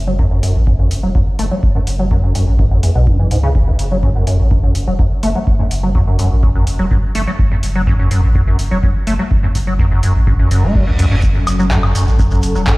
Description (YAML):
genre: acid house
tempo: 125 BPM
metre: 4/4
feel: straight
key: F# minor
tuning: A4 = 441 Hz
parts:
  - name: saturated sub bass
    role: bass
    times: 0.0-12.7 s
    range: E1 to F#2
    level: -17 LUFS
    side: equal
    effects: sidechain pumping
  - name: liquid acid bass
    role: riff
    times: 0.1-12.7 s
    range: E2 to A3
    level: -16 LUFS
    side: equal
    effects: wide subtle chorus, cassette tape, sidechain pumping, analog delay
  - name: electronic kick drum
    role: drums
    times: 0.2-12.8 s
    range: none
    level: -16 LUFS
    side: equal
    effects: none
  - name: booming analog drum machine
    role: drums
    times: 0.4-12.8 s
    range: handclaps, hi-hat, woodblock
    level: -25 LUFS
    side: equal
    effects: none
  - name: reverse cymbal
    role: sound effects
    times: 10.5-11.2 s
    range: none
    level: -30 LUFS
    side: right 1 dB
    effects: none
  - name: warm analog pad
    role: sustained chords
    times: 11.2-12.8 s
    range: F#3 to A4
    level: -21 LUFS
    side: left 1 dB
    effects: chorus, sidechain pumping
  - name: shekere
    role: percussion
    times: 11.2-12.8 s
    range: none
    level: -32 LUFS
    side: right 4 dB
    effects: none
room: light reverb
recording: played on a big sound system in a bare room, stone room reverb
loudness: -12 LUFS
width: side -22 dB against mid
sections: 0.0-12.8 A section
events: filter sweep on acid bass 0.0-12.8; reverse cymbal 10.5-11.2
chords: 0.0 F#m